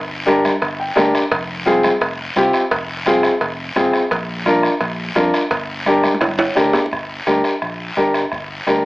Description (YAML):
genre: latin, cumbia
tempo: 172 BPM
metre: 4/4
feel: straight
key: unclear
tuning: A4 = 441 Hz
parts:
  - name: fingered electric bass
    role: bass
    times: 0.0-8.8 s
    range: F1 to F2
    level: -30 LUFS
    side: equal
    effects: none
  - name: warm upright piano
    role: accompaniment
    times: 0.3-8.8 s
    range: C4 to G5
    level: -15 LUFS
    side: left 1 dB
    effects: none
  - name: bombo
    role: percussion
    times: 0.3-8.8 s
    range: none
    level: -23 LUFS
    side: right 1 dB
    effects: none
  - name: congas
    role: percussion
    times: 0.3-8.8 s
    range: none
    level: -30 LUFS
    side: equal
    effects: none
  - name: guiro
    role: percussion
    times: 0.3-8.8 s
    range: none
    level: -27 LUFS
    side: left 1 dB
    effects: none
  - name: cowbell and timbales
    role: percussion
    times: 0.6-6.8 s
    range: none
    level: -21 LUFS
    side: right 2 dB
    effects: none
room: moderate studio reverb, RT60 0.7 s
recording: AM radio sound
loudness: -15 LUFS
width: side -20 dB against mid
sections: 0.0-6.9 A section; 6.9-8.8 B section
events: upright piano fill 0.6-1.3; drum fill 6.0-6.9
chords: 0.0 Gm; 1.3 Fm; 4.1 Bb; 5.5 Gm